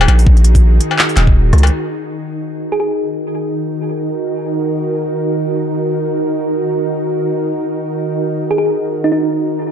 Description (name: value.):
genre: half-time drum and bass.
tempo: 166 BPM.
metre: 4/4.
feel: swing 58% on 16ths, half-time.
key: Eb minor.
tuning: A4 = 440 Hz.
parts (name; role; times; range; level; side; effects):
bowed-like drone; sustained chords; 0.0-9.7 s; Eb3 to Bb4; -18 LUFS; right 1 dB; built-in reverb, sidechain pumping.
long sustained 808-style bass; bass; 0.0-1.7 s; Eb1 to Db2; -10 LUFS; equal; none.
industrial drum kit; drums; 0.0-1.7 s; handclaps, hi-hat, rim click, struck metal; -16 LUFS; left 3 dB; none.
electronic kick drum; drums; 0.3-1.3 s; none; -10 LUFS; equal; none.
thumb-piano-like synth pluck; melody; 2.7-2.9, 8.5-9.2 s; Eb4 to Ab4; -18 LUFS; equal; chorus, dub echo.
room: moderate digital room reverb, RT60 1.3 s, digital ambience.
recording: dark, warm production.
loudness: -13 LUFS.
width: side -9 dB against mid.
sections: 0.0-1.7 A section; 1.7-9.7 B section.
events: drop 0.0-1.7; kick drops out 1.4-1.7; drum fill 1.5; filter sweep on synth drone 1.7-9.7.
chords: 0.0 Ebm.